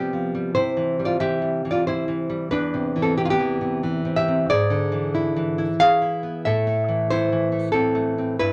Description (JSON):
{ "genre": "romantic piece for solo classical guitar", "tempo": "92 BPM", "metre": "3/4", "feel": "rubato", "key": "C major, A minor from 4.5 s", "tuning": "A4 = 440 Hz", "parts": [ { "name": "nylon-string guitar", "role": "solo", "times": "0.0-8.5 s", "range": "E2 to F5", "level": "-22 LUFS", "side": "equal", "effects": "none" } ], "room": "moderate small room ambience, RT60 0.5 s", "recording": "none", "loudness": "-22 LUFS", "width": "mono", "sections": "0.0-8.5 A section", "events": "none", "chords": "0.0 G7/C; 0.6 C; 2.5 C/E; 4.5 E7/G#; 6.4 Am" }